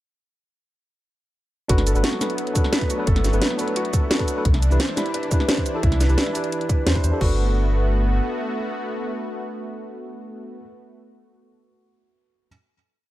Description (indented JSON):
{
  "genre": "liquid drum and bass",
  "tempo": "174 BPM",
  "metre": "4/4",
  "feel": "straight",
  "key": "G major",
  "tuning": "A4 = 440 Hz",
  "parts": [
    { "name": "tine electric piano", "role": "accompaniment", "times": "1.7-10.7 s", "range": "D4 to B5", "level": "-28 LUFS", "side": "equal", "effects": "dub echo" },
    { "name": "lush unison pad", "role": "sustained chords", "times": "1.7-10.6 s", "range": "E3 to F#4", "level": "-29 LUFS", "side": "equal", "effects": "chorus, sidechain pumping" },
    { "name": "felt-muted upright piano", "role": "arpeggios", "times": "1.7-7.4 s", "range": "E4 to C5", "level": "-30 LUFS", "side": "right 1 dB", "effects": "digital delay" },
    { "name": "sub bass with octave", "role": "bass", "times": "1.7-8.2 s", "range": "G1 to E2", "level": "-20 LUFS", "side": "equal", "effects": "none" },
    { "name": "electronic kick drum", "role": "drums", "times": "1.7-7.3 s", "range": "none", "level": "-21 LUFS", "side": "equal", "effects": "none" },
    { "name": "garage drum kit", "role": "drums", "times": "1.7-7.3 s", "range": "cabasa, crash cymbal, hi-hat, snare drum", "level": "-25 LUFS", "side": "equal", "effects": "none" }
  ],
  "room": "little or no reverb",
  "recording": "none",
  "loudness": "-19 LUFS",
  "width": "side -15 dB against mid",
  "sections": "1.7-7.2 drop; 7.2-10.0 final chord",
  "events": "drop 1.7-7.2",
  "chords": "1.7 Gmaj9; 4.5 Cmaj9; 7.2 Gmaj9"
}